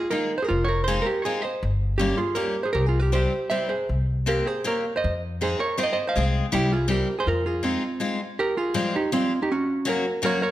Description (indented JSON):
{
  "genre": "musette waltz",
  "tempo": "160 BPM",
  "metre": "3/4",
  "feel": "rubato",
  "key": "F minor",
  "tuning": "A4 = 437 Hz",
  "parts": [
    { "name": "hollow-body jazz guitar", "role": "melody", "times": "0.0-10.5 s", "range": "C4 to F5", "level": "-24 LUFS", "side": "right 2 dB", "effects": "none" },
    { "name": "picked steel-string acoustic guitar", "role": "accompaniment", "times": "0.1-10.4 s", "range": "Db3 to Ab4", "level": "-28 LUFS", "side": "left 4 dB", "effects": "none" },
    { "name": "upright bass", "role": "bass", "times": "0.5-7.8 s", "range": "F1 to F2", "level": "-25 LUFS", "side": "left 1 dB", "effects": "none" }
  ],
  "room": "moderate recital hall reverb, RT60 1.2 s",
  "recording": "none",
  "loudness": "-22 LUFS",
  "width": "side -14 dB against mid",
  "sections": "0.0-8.4 A section; 8.4-10.5 B section",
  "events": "none",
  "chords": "0.5 Fm7; 1.6 Gdim; 2.7 C; 3.9 C7sus4; 5.0 Fm7; 6.1 Fm/C; 6.5 C; 7.3 Fm7; 8.4 Fmadd9; 9.5 Gb"
}